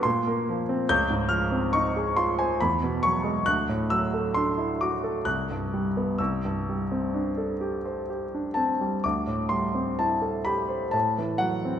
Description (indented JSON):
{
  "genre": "classical, impressionist solo piano",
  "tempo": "62-72 BPM",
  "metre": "3/4",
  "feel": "rubato",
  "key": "unclear",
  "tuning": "A4 = 440 Hz",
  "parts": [
    { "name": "clear grand piano", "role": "solo", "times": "0.0-11.8 s", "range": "C2 to G6", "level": "-24 LUFS", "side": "equal", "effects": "none" }
  ],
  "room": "wet concert hall reverb, RT60 2.0 s",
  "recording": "nothing above 10.7 kHz",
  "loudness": "-24 LUFS",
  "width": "side -9 dB against mid",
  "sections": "0.0-11.8 A section",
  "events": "none",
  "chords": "0.0 A#sus2; 0.9 C#maj9; 2.6 Eadd9; 3.5 Dadd9; 5.3 C5; 6.2 C69; 9.0 D9sus4; 10.9 Am6"
}